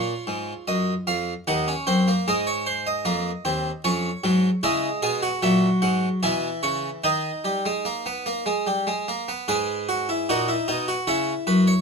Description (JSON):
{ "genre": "classical, baroque-style 4-part fugue for harpsichord", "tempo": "75 BPM", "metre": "3/4", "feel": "straight", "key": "G# minor from 4.6 s", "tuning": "A4 = 440 Hz", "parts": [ { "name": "harpsichord", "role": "solo", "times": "0.0-11.8 s", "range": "Eb2 to G#5", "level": "-21 LUFS", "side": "equal", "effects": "none" } ], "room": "light reverb", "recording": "close, detailed microphones", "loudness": "-21 LUFS", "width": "side -4 dB against mid", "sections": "0.0-9.5 A section; 9.5-11.8 B section", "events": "none", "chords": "0.0 Bbm; 1.5 Ebm7; 2.3 Ab; 3.8 Db/F; 4.6 C#m; 7.0 D#; 9.5 G#m; 11.1 C#m" }